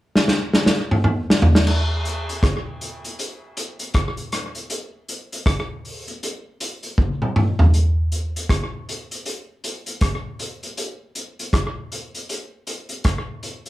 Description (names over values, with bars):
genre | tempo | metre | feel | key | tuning
reggae | 79 BPM | 4/4 | swing 61% on 16ths | none | none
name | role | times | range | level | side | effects
vintage drum kit | drums | 0.2-13.7 s | crash cymbal, hi-hat, kick drum, rim click, snare drum, toms | -19 LUFS | equal | slapback echo
room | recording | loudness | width
moderate studio reverb, RT60 0.5 s | small room ambience | -20 LUFS | side -16 dB against mid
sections
0.0-1.7 A section; 1.7-7.7 B section; 7.7-13.7 C section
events
drum fill 0.1-1.7, 7.0-7.7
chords
none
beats
0.15 0.91 | 1.67 2.43 3.19 3.94 | 4.70 5.46 6.22 6.98 | 7.74 8.49 9.25 10.01 | 10.77 11.53 12.29 13.04